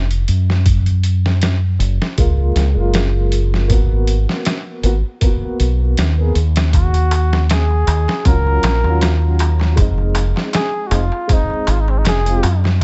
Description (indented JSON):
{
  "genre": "trip hop",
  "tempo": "79 BPM",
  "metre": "4/4",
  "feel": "swing 54% on 16ths",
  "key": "unclear",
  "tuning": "A4 = 440 Hz",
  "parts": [
    { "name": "deep dub fingered electric bass", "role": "bass", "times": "0.0-12.8 s", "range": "F1 to Gb2", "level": "-17 LUFS", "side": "equal", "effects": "none" },
    { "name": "trip hop sampler-style drum kit", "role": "drums", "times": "0.1-12.8 s", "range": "hi-hat, kick drum, snare drum", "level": "-21 LUFS", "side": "equal", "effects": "none" },
    { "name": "dark upright piano", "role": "accompaniment", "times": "2.2-12.4 s", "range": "Gb3 to Ab4", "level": "-26 LUFS", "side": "equal", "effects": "tremolo, tape echo" },
    { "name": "darbuka", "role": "percussion", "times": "6.7-12.8 s", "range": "none", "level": "-31 LUFS", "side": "equal", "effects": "none" },
    { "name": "trumpet with bucket mute", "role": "melody", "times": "6.8-12.6 s", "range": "C4 to Bb4", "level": "-24 LUFS", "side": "equal", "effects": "tape echo" }
  ],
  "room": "studio ambience",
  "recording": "vinyl crackle, nothing above 7.9 kHz",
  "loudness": "-16 LUFS",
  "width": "mono",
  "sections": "0.0-12.8 A section",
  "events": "none",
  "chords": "0.0 N.C.; 0.7 Gbmaj7; 3.7 Abm7; 6.7 Ebm7; 9.8 Fm7"
}